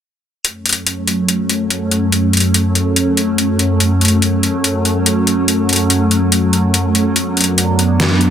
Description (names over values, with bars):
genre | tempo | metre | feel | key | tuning
heavy wobble dubstep | 143 BPM | 4/4 | half-time | F# minor | A4 = 435 Hz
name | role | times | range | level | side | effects
evolving wavetable pad | sustained chords | 0.7-8.3 s | F#2 to D4 | -14 LUFS | equal | ensemble chorus, built-in reverb, phaser
dubstep drum kit | drums | 0.4-8.3 s | hi-hat, snare drum | -15 LUFS | left 2 dB | overdrive
room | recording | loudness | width
moderate lush hall reverb, RT60 2.4 s | dense, heavily limited modern master | -12 LUFS | side -9 dB against mid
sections
0.4-8.3 A section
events
filter sweep on ambient pad 0.4-8.3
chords
0.4 F#m; 7.2 Bm/F#